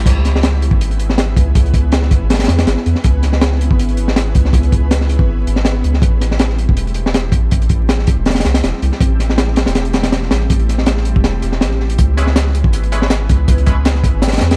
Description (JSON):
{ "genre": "drum and bass, jungle", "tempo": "161 BPM", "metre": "4/4", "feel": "swing 54% on 16ths", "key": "C# minor", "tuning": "A4 = 444 Hz", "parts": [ { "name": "soft dub sub bass", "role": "bass", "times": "0.0-14.6 s", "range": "E1 to E2", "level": "-17 LUFS", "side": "equal", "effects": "none" }, { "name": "crunchy breakbeat drum kit", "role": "drums", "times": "0.1-14.6 s", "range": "crash cymbal, hi-hat, kick drum, snare drum", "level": "-17 LUFS", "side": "equal", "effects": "none" }, { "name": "breakbeat sampler-style drum kit", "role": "drums", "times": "12.0-14.6 s", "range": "hi-hat, snare drum, tambourine", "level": "-31 LUFS", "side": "equal", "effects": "high-pass filter on snare, high-pass filter on perc, high-pass filter on hats" }, { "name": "band-passed chord stab", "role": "stabs", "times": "12.2-13.8 s", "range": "G#3 to B4", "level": "-29 LUFS", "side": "equal", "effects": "chorus, dub echo" } ], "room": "small room ambience", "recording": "dark, warm production, vinyl crackle", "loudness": "-14 LUFS", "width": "mono", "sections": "0.1-14.6 A section", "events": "drop 0.1-14.6; break 11.2-12.0", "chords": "0.1 C#m7; 6.0 Am7; 12.0 C#m7" }